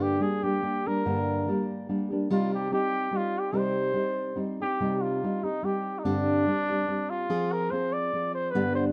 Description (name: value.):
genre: mexican folk.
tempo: 144 BPM.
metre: 3/4.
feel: rubato.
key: C minor.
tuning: A4 = 441 Hz.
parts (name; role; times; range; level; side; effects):
mellow trumpet; melody; 0.0-8.8 s; D4 to D5; -32 LUFS; equal; none.
nylon-string guitar; accompaniment; 0.0-8.9 s; G2 to Ab4; -30 LUFS; equal; none.
room: light reverb.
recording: close, detailed microphones.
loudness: -28 LUFS.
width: mono.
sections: 0.0-4.8 A section; 4.8-8.9 B section.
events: none.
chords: 0.0 Gm; 2.3 Cm; 6.1 Gsus4; 7.3 Fm.